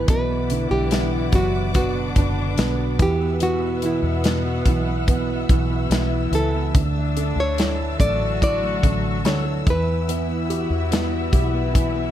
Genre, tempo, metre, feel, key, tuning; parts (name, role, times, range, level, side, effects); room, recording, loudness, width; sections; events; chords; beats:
pop ballad; 72 BPM; 4/4; straight; A4 = 440 Hz
nylon-string guitar; melody; 0.0-11.3 s; E4 to D5; -26 LUFS; equal
dark chamber cello section; second line; 0.0-12.1 s; B2 to F#4; -28 LUFS; left 4 dB
felt-muted upright piano; accompaniment; 0.0-12.1 s; B2 to G4; -27 LUFS; right 8 dB
warm studio string section; sustained chords; 0.0-12.1 s; D4 to E6; -32 LUFS; left 1 dB
fingerpicked plugged-in steel-string acoustic guitar; arpeggios; 0.0-12.1 s; B2 to A4; -33 LUFS; left 4 dB
vintage muted fingered electric bass; bass; 0.0-12.1 s; F#1 to E2; -24 LUFS; equal
modern studio drum kit; drums; 0.1-11.9 s; hi-hat, kick drum, snare drum; -20 LUFS; equal
studio reverb; -18 LUFS; side -11 dB against mid
0.0-12.1 A section
0.1 Bm; 3.0 Esus2; 6.8 Dsus2; 9.7 Emadd9
| 0.08 0.92 1.75 2.58 | 3.42 4.25 5.08 5.92 | 6.75 7.58 8.42 9.25 | 10.08 10.92 11.75